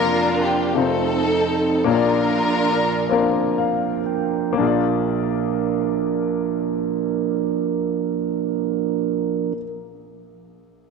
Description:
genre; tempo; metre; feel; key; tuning
slow gospel; 36-59 BPM (dotted quarters); 6/8; straight; Bb major; A4 = 441 Hz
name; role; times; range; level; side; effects
warm studio string section; melody; 0.0-3.5 s; C4 to Bb4; -21 LUFS; left 1 dB; none
warm upright piano; accompaniment; 0.0-10.9 s; F1 to F5; -23 LUFS; left 9 dB; none
mellow tonewheel organ; sustained chords; 0.0-9.5 s; F3 to G5; -22 LUFS; right 10 dB; fast rotary speaker
room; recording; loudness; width
wet plate reverb, RT60 2.6 s; 1960s-style stereo with parts hard left and right; -18 LUFS; side -4 dB against mid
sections
0.0-4.6 A section; 4.6-10.9 B section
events
slowing down 0.0-4.6; upright piano fill 3.1-4.6; tonewheel organ fill 3.1-4.6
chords
0.0 Bb/F; 0.8 F7; 1.9 Bb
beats
0.76 | 1.86 3.11 | 4.59 6.25 | 7.91 9.57

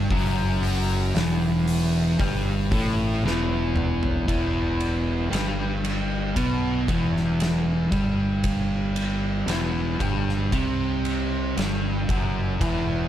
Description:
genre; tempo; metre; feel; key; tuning
stoner and doom metal; 58 BPM; 4/4; straight; E minor; A4 = 443 Hz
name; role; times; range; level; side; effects
fuzz guitar; riff; 0.0-13.1 s; E2 to C4; -24 LUFS; equal; distortion
growling fingered electric bass; bass; 0.0-13.1 s; E1 to C2; -28 LUFS; equal; overdrive
oversized low-tuned drum kit; drums; 0.1-12.9 s; hi-hat, kick drum, ride cymbal, snare drum, toms; -28 LUFS; equal; none
room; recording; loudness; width
little or no reverb; dark, warm production; -22 LUFS; side -11 dB against mid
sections
0.0-4.3 A section; 4.3-13.1 B section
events
drum fill 3.2-4.3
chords
0.0 Em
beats
| 0.10 1.15 2.19 3.24 | 4.28 5.32 6.36 7.40 | 8.44 9.48 10.52 11.57 | 12.61

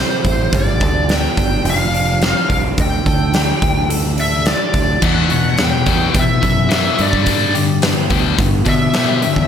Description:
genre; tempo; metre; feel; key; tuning
quiet-loud alternative rock; 107 BPM; 4/4; straight; unclear; A4 = 440 Hz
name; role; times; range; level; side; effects
bluesy overdriven lead guitar; melody; 0.0-9.5 s; C5 to G5; -19 LUFS; left 1 dB; distortion, slapback echo
clean electric guitar; arpeggios; 0.0-9.5 s; E2 to A4; -24 LUFS; right 5 dB; harmonic tremolo, slapback echo
growling fingered electric bass; bass; 0.0-9.5 s; F1 to B2; -20 LUFS; equal; overdrive
huge arena drum kit; drums; 0.2-9.5 s; crash cymbal, hi-hat, kick drum, snare drum; -17 LUFS; equal; none
scooped high-gain guitar; riff; 5.0-9.5 s; E2 to G3; -18 LUFS; left 7 dB; distortion
room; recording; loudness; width
moderate lush hall reverb, RT60 1.7 s; big arena sound; -13 LUFS; side -8 dB against mid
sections
0.0-5.0 A section; 5.0-9.5 B section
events
none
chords
0.0 C; 0.5 Gadd9; 1.7 F5; 2.8 Dsus4; 5.0 Emadd9; 7.0 G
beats
| 0.53 1.09 1.65 2.22 | 2.78 3.35 3.91 4.47 | 5.03 5.59 6.16 6.72 | 7.28 7.84 8.40 8.96

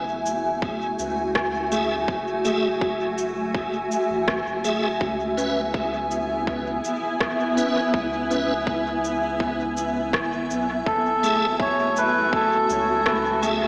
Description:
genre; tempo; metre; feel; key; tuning
ambient dub; 82 BPM; 4/4; straight; F# minor; A4 = 441 Hz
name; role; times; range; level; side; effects
granular cloud pad; sustained chords; 0.0-13.7 s; A3 to G#5; -26 LUFS; equal; built-in reverb
soft dub sub bass; bass; 0.0-13.7 s; F#1 to C#2; -40 LUFS; equal; none
electronic shaker and rim click; drums; 0.3-13.6 s; none; -32 LUFS; equal; overdrive, dub echo
electronic kick drum; drums; 0.6-13.2 s; none; -33 LUFS; equal; overdrive
tonewheel organ; stabs; 1.7-13.7 s; A3 to E5; -32 LUFS; equal; overdrive, chorus vibrato, fast rotary speaker, dub echo
melodica; melody; 10.9-13.4 s; A4 to C#5; -23 LUFS; equal; dub echo
room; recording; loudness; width
wet lush hall reverb, RT60 2.8 s; dreamy mix soaked in reverb, small speaker sound; -24 LUFS; mono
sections
0.0-13.7 A section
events
none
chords
0.0 F#m9; 5.0 C#m7; 10.9 F#m9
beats
0.62 1.35 | 2.09 2.82 3.55 4.28 | 5.01 5.75 6.48 7.21 | 7.94 8.67 9.40 10.14 | 10.87 11.60 12.33 13.06

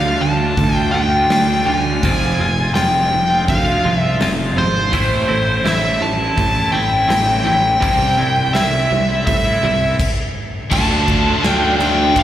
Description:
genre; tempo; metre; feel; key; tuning
quiet-loud alternative rock; 83 BPM; 4/4; straight; D minor; A4 = 440 Hz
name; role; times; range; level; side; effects
nasal lead guitar with a parked wah; melody; 0.0-12.2 s; C5 to A5; -17 LUFS; equal; overdrive, slapback echo, digital delay
twangy electric guitar; arpeggios; 0.0-10.0 s; F2 to F4; -23 LUFS; left 2 dB; tremolo, slapback echo
raw garage guitar; riff; 0.0-12.2 s; F2 to F4; -22 LUFS; right 6 dB; overdrive, slapback echo
fuzz picked electric bass; bass; 0.0-12.2 s; F1 to A2; -20 LUFS; equal; overdrive
huge arena drum kit; drums; 0.6-12.2 s; crash cymbal, hi-hat, kick drum, ride cymbal, snare drum; -22 LUFS; left 1 dB; none
high-gain distorted guitar; riff; 10.7-12.2 s; D3 to F4; -20 LUFS; left 12 dB; distortion, slapback echo
room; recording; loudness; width
light reverb, small room ambience; live gig heard through the venue's PA, recital hall reverb; -13 LUFS; side -11 dB against mid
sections
0.0-10.7 A section; 10.7-12.2 B section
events
stop 10.0-10.7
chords
0.0 Dm; 2.0 Fm; 4.9 Am; 7.8 C; 10.7 Dm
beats
0.57 1.30 | 2.02 2.75 3.48 4.20 | 4.93 5.65 6.38 7.10 | 7.83 8.55 9.27 10.00 | 10.72 11.44 12.16

